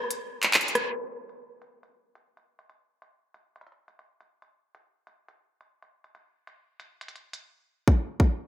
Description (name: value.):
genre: hip hop.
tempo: 139 BPM.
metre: 4/4.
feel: half-time.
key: none.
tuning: none.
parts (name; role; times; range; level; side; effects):
drill drum kit; drums; 0.1-8.3 s; handclaps, hi-hat, kick drum, rim click; -23 LUFS; equal; gated reverb.
room: moderate lush hall reverb, RT60 1.9 s.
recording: bright 1980s-style digital production, low-pass filter.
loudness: -23 LUFS.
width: side -13 dB against mid.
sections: 1.0-7.9 A section.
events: break 0.0-1.0; filter sweep 1.0-7.9; hi-hats muted 7.9-8.5.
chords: none.